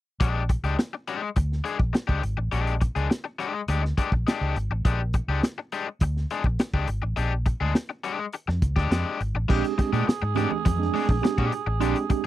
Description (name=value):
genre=funk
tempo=103 BPM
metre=4/4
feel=straight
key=Bb mixolydian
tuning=A4 = 440 Hz
part: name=overdriven electric guitar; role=accompaniment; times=0.2-12.3 s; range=Ab3 to Ab4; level=-29 LUFS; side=left 6 dB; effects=none
part: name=vintage muted fingered electric bass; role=bass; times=0.2-12.1 s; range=Ab1 to Bb2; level=-26 LUFS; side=equal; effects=none
part: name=crunchy breakbeat drum kit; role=drums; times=0.2-12.3 s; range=crash cymbal, hi-hat, kick drum, snare drum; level=-24 LUFS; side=equal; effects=none
part: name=raspy tenor saxophone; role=second line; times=9.5-12.3 s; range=Ab4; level=-31 LUFS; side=right 6 dB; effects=none
part: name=mellow tine electric piano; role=stabs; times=9.5-12.3 s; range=Ab3 to Ab4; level=-27 LUFS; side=right 10 dB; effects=medium stereo tremolo
part: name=congas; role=percussion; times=9.5-12.2 s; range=none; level=-33 LUFS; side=right 15 dB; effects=none
room=little or no reverb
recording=dry, close 1970s-style studio recording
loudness=-23 LUFS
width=side -14 dB against mid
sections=0.2-9.5 A section; 9.5-12.3 B section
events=none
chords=0.2 Bb6; 9.5 Bb13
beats=| 0.20 0.78 1.36 1.95 | 2.53 3.11 3.69 4.27 | 4.85 5.43 6.01 6.59 | 7.18 7.76 8.34 8.92 | 9.50 10.08 10.65 11.23 | 11.81